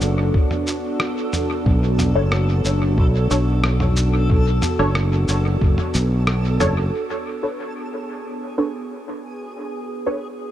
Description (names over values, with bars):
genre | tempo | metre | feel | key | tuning
ambient dub | 91 BPM | 4/4 | straight | B dorian | A4 = 440 Hz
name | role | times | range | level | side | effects
warbly tape-like pad | sustained chords | 0.0-10.5 s | B3 to C#5 | -26 LUFS | equal | chorus, built-in reverb
overdriven fingered electric bass | bass | 0.0-6.9 s | F#1 to B1 | -18 LUFS | equal | none
lo-fi sampler-style drum kit | drums | 0.0-6.7 s | cabasa, rim click, toms | -26 LUFS | equal | low-pass filter on toms, small room ambience, low-pass filter on perc, low-pass filter on snare, dub echo
backwards swelling texture | texture | 0.0-10.5 s | G#4 to A4 | -30 LUFS | right 2 dB | built-in reverb
electronic kick drum | drums | 0.3-5.7 s | none | -17 LUFS | equal | small room ambience
filtered dub chord stab | stabs | 2.2-10.2 s | D4 to C#5 | -27 LUFS | equal | phaser, ensemble chorus, dub echo
room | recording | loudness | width
digital ambience | none | -17 LUFS | side -12 dB against mid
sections
0.0-6.9 A section; 6.9-10.5 B section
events
filter sweep on synth stab 0.0-6.9, 6.9-10.5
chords
0.0 Bm9